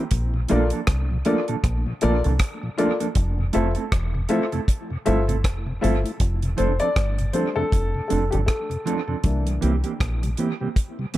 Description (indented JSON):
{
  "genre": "roots reggae",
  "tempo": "79 BPM",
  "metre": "4/4",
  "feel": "swing 59% on 16ths",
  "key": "F major",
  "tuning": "A4 = 440 Hz",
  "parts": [
    { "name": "mellow electric guitar", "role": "accompaniment", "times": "0.0-11.2 s", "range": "E3 to A4", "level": "-28 LUFS", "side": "right 6 dB", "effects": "tape echo" },
    { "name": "mellow tonewheel organ", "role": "accompaniment", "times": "0.0-11.2 s", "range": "F2 to E4", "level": "-29 LUFS", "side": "left 1 dB", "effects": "slow rotary speaker, dub echo" },
    { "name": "deep dub fingered electric bass", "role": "bass", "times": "0.1-10.3 s", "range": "E1 to C2", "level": "-23 LUFS", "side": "equal", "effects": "none" },
    { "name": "deep reggae drum kit", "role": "drums", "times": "0.1-11.2 s", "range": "hi-hat, kick drum, rim click", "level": "-25 LUFS", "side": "equal", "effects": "dub echo" },
    { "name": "dark upright piano", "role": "stabs", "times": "0.5-10.3 s", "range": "E3 to E5", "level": "-26 LUFS", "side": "left 4 dB", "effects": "none" }
  ],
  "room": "small room ambience",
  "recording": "none",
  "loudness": "-20 LUFS",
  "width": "side -15 dB against mid",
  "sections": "0.0-6.2 A section; 6.2-11.2 B section",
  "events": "upright piano solo 6.2-11.2",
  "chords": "0.1 Bbmaj7; 3.2 Fmaj7; 6.2 F6; 9.2 C7",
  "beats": "| 0.12 0.88 1.64 2.40 | 3.16 3.92 4.68 5.44 | 6.20 6.96 7.72 8.48 | 9.24 10.00 10.76"
}